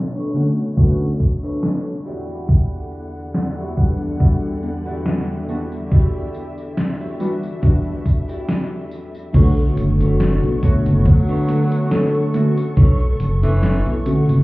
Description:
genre	vaporwave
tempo	70 BPM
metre	4/4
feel	swing 54% on 16ths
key	B minor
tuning	A4 = 440 Hz
part	warm studio string section	sustained chords	0.0-14.4 s	E2 to C#6	-29 LUFS	left 1 dB	none
part	clean electric guitar	riff	0.1-14.1 s	D4 to D5	-28 LUFS	equal	lush chorus, low-pass filter, tape echo
part	warbly lo-fi synth keys	accompaniment	0.3-14.3 s	D3 to F#5	-20 LUFS	equal	wide subtle chorus, tape echo
part	gated 80s digital drum machine	drums	0.3-14.4 s	crash cymbal, hi-hat, snare drum, tambourine	-24 LUFS	equal	gated reverb, gated reverb snare
part	electronic kick drum	drums	0.8-13.0 s	none	-14 LUFS	equal	none
part	chorused synth bass	bass	9.3-14.4 s	F#1 to B1	-17 LUFS	equal	tube saturation
part	bright tenor saxophone	melody	11.1-13.9 s	E3 to F#3	-28 LUFS	equal	vintage 12-bit sampler grit, tape echo
room	light reverb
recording	heard muffled through a wall, club ambience, cassette tape, EQ, low-pass filter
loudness	-16 LUFS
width	side -20 dB against mid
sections	0.0-9.3 A section; 9.3-14.4 B section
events	filter sweep on clean electric guitar 0.0-9.3; filter sweep 0.0-9.3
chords	0.0 Bm9; 2.1 Em9; 9.3 Bm9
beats	0.77 1.63 | 2.49 3.35 4.20 5.06 | 5.92 6.77 7.63 8.49 | 9.35 10.20 11.06 11.92 | 12.77 13.63

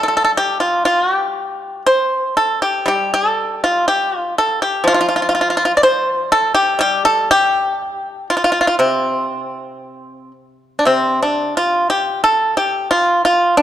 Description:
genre	chinese traditional, Chinese solo plucked strings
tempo	58-64 BPM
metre	2/4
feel	rubato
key	C zhi mode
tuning	A4 = 440 Hz
part	pipa	solo	0.0-13.6 s	C3 to D5	-14 LUFS	equal	none
room	light reverb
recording	dark, warm production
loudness	-14 LUFS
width	side -11 dB against mid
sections	0.0-10.9 A section; 10.9-13.6 B section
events	none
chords	none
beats	| 0.85 1.85 | 2.88 3.88 | 4.85 5.82 | 6.80 7.80 | 8.81 9.84 | 10.88 11.89 | 12.89

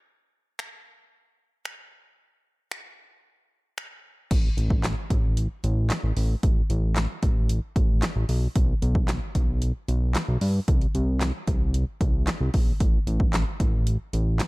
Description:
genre	dance-pop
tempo	113 BPM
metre	4/4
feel	straight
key	unclear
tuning	A4 = 440 Hz
part	deep house drum kit	drums	0.6-14.5 s	crash cymbal, finger snaps, handclaps, hi-hat, kick drum, snare drum	-24 LUFS	equal	none
part	fat analog bass	bass	4.3-14.4 s	A1 to G2	-24 LUFS	equal	sidechain pumping
room	little or no reverb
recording	dark, warm production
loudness	-22 LUFS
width	side -24 dB against mid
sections	0.0-4.3 A section; 4.3-14.5 B section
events	kick muted 3.2-4.3; drop 4.3-14.5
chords	none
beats	| 0.06 0.59 1.12 1.65 | 2.18 2.71 3.25 3.78 | 4.31 4.84 5.37 5.90 | 6.43 6.96 7.49 8.03 | 8.56 9.09 9.62 10.15 | 10.68 11.21 11.74 12.27 | 12.80 13.34 13.87 14.40

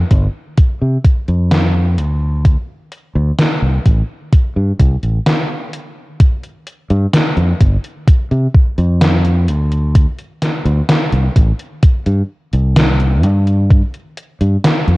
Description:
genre	vaporwave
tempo	64 BPM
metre	4/4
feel	straight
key	unclear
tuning	A4 = 441 Hz
part	fingered electric bass	bass	0.0-15.0 s	G1 to C3	-13 LUFS	equal	tube saturation
part	electronic kick drum	drums	0.1-13.9 s	none	-10 LUFS	equal	overdrive
part	gated 80s digital drum machine	drums	0.1-15.0 s	hi-hat, snare drum	-16 LUFS	equal	gated reverb, gated reverb snare, overdrive
room	light reverb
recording	cassette tape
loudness	-12 LUFS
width	side -21 dB against mid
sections	0.0-6.2 A section; 6.2-15.0 B section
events	none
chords	none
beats	0.58 1.51 | 2.45 3.39 4.33 5.26 | 6.20 7.14 8.08 9.02 | 9.95 10.89 11.83 12.77 | 13.70 14.64

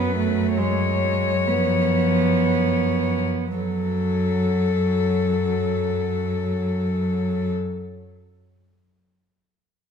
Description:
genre	classical, lyrical piece for cello ensemble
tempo	free time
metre	none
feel	none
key	F# minor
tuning	A4 = 439 Hz
part	warm cello	melody	0.0-7.5 s	A4 to C#5	-25 LUFS	left 7 dB	none
part	warm cello	second line	0.0-7.5 s	F#3 to B3	-24 LUFS	right 6 dB	none
part	warm cello	accompaniment	0.0-7.5 s	E#3 to F#3	-27 LUFS	left 4 dB	none
part	dark cello	bass	0.0-7.5 s	F#2	-27 LUFS	equal	none
room	wet recital hall reverb, RT60 1.6 s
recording	minimal, uncompressed stereo recording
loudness	-20 LUFS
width	side -7 dB against mid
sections	0.0-3.6 A section; 3.6-6.7 B section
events	slowing down 0.0-3.6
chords	0.0 B5/F#; 0.6 C#7/F#; 3.6 F#m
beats	free time

